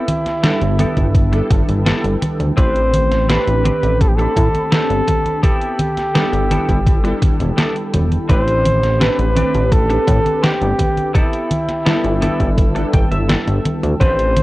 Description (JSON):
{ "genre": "vaporwave", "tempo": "84 BPM", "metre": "4/4", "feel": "straight", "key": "unclear", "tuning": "A4 = 443 Hz", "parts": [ { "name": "mellow flugelhorn", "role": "melody", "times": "0.0-14.4 s", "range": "E4 to C5", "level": "-20 LUFS", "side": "equal", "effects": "vintage 12-bit sampler grit, tape echo" }, { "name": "warbly tape-like pad", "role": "sustained chords", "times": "0.0-14.4 s", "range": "C4 to E6", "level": "-31 LUFS", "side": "left 3 dB", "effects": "chorus, built-in reverb" }, { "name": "semi-hollow electric guitar", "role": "riff", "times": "0.0-14.4 s", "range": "B3 to G5", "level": "-26 LUFS", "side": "equal", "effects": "analog chorus, tape echo" }, { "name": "detuned 8-bit digital drum machine", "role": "drums", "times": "0.1-14.4 s", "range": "congas, hi-hat, snare drum", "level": "-20 LUFS", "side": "equal", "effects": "small room ambience" }, { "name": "warbly lo-fi synth keys", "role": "accompaniment", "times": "0.4-14.0 s", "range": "G3 to B5", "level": "-24 LUFS", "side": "equal", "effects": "ensemble chorus, tape echo" }, { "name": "chorused synth bass", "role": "bass", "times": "0.6-14.4 s", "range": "E1 to A2", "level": "-17 LUFS", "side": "equal", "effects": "none" }, { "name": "electronic kick drum", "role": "drums", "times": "1.0-14.2 s", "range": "none", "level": "-15 LUFS", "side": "equal", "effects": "small room ambience" } ], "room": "digital ambience", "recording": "worn, warbling old tape, cassette tape, warbly pitch drift", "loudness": "-13 LUFS", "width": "side -18 dB against mid", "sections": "0.0-14.4 A section", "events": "clean electric guitar fill 12.6-14.0", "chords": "0.0 G69; 2.6 Am11; 5.4 G69; 8.3 Am11; 11.2 G69" }